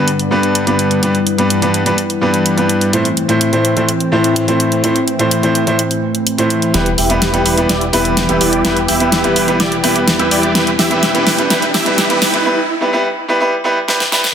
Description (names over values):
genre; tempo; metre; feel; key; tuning
EDM, festival progressive house; 126 BPM; 4/4; straight; E minor; A4 = 441 Hz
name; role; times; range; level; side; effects
bright grand piano; accompaniment; 0.0-14.2 s; G2 to C5; -15 LUFS; equal; tape echo
lush unison pad; sustained chords; 0.0-12.4 s; G2 to G4; -18 LUFS; left 1 dB; chorus
big-room dance drum kit; drums; 0.1-14.3 s; hi-hat, snare drum; -17 LUFS; equal; none
dense compressed supersaw; riff; 6.7-12.4 s; E4 to E5; -17 LUFS; equal; low-pass filter, tape echo
wide detuned saw bass; bass; 6.7-12.4 s; E1; -24 LUFS; equal; chorus
riser; sound effects; 9.8-12.5 s; none; -24 LUFS; right 2 dB; none
room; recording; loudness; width
moderate digital room reverb, RT60 1.3 s, digital ambience; dense, heavily limited modern master, high-pass filter; -12 LUFS; side -8 dB against mid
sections
0.0-6.7 A section; 6.7-14.3 B section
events
filter sweep on analog synth pad 0.0-6.7; build-up 6.7-14.3; drum fill 6.7-12.5, 13.9-14.3; filter sweep on supersaw synth 6.7-14.3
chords
0.0 G; 2.9 Am; 6.7 Em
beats
0.08 0.55 | 1.03 1.50 1.98 2.46 | 2.93 3.41 3.88 4.36 | 4.84 5.31 5.79 6.27 | 6.74 7.22 7.70 8.17 | 8.65 9.12 9.60 10.08 | 10.55 11.03 11.50 11.98 | 12.46 12.93 13.41 13.88